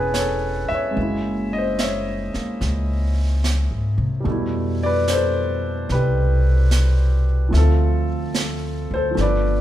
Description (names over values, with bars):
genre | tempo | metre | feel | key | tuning
jazz ballad | 73 BPM | 4/4 | swing 68% on 8ths | unclear | A4 = 440 Hz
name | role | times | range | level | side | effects
clear upright piano | accompaniment | 0.0-9.6 s | B2 to E5 | -23 LUFS | equal | none
upright bass | bass | 0.0-9.6 s | E1 to C3 | -20 LUFS | equal | none
jazz brush drum kit | drums | 0.1-9.6 s | brushed snare drum, hi-hat, snare drum | -28 LUFS | right 3 dB | none
room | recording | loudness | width
moderate recital hall reverb, RT60 1.4 s | recorded in a church or concert hall | -18 LUFS | side -12 dB against mid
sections
0.0-9.6 A section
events
none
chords
0.0 Amaj9; 1.0 F#9; 4.2 Fmaj9#11; 7.5 Dm7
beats
0.14 | 0.96 1.79 2.61 3.43 | 4.25 5.06 5.88 6.70 | 7.52 8.34 9.16